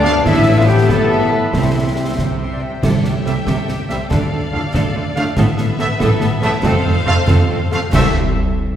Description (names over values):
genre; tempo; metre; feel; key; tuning
cinematic, heroic adventure film score; 94 BPM (dotted quarters); 6/8; straight; C major; A4 = 440 Hz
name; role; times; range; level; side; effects
rich symphonic violin section; melody; 0.0-8.2 s; E5 to C6; -29 LUFS; left 3 dB; none
clear symphonic violin section; second line; 0.0-8.2 s; G4 to G5; -29 LUFS; left 2 dB; none
mellow cor anglais; second line; 0.0-8.1 s; D4 to B4; -30 LUFS; right 1 dB; none
silver concert flute; second line; 0.0-8.2 s; D5 to B5; -31 LUFS; left 1 dB; none
rich symphonic viola section; accompaniment; 0.0-8.2 s; B3 to A4; -26 LUFS; equal; none
bright trombone section; sustained chords; 0.0-8.1 s; G2 to C4; -29 LUFS; right 2 dB; none
mellow French horn section; sustained chords; 0.0-8.1 s; B3 to B4; -22 LUFS; left 2 dB; none
mellow trumpet section; stabs; 0.0-8.1 s; E5 to F5; -24 LUFS; equal; none
clear studio cello section; bass; 0.0-8.2 s; C2 to D3; -21 LUFS; right 1 dB; none
rich symphonic double bass section; bass; 0.0-8.2 s; F1 to D2; -20 LUFS; equal; none
concert snare drum, clash cymbals and concert bass drum; drums; 0.0-8.2 s; none; -20 LUFS; equal; none
timpani; percussion; 1.5-3.4, 7.9-8.1 s; C3; -22 LUFS; right 3 dB; none
warm clarinet; second line; 2.2-8.1 s; A3 to E5; -29 LUFS; left 1 dB; none
room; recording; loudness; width
wet scoring stage reverb, RT60 1.9 s; heard from further back in the room; -13 LUFS; side -10 dB against mid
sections
0.0-2.8 A section; 2.8-7.9 B section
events
none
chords
0.3 Asus2; 1.5 C; 2.8 C6; 4.1 Dm; 5.4 Asus2; 6.6 F; 7.9 C6